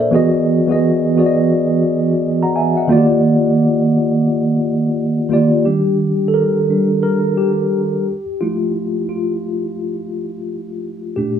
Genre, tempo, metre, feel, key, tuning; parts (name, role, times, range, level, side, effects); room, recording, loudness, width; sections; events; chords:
R&B; 87 BPM; 4/4; swing 61% on 16ths; A4 = 439 Hz
mellow tine electric piano; solo; 0.0-11.4 s; Bb2 to Bb5; -14 LUFS; equal; medium stereo tremolo
wet studio ambience, RT60 0.5 s; -14 LUFS; side -8 dB against mid
0.0-5.6 A section; 5.6-11.4 B section
tine electric piano solo 5.6-11.4
0.1 Emaj9; 2.9 Ebmaj9; 5.6 Ebmaj7; 8.1 Fmaj7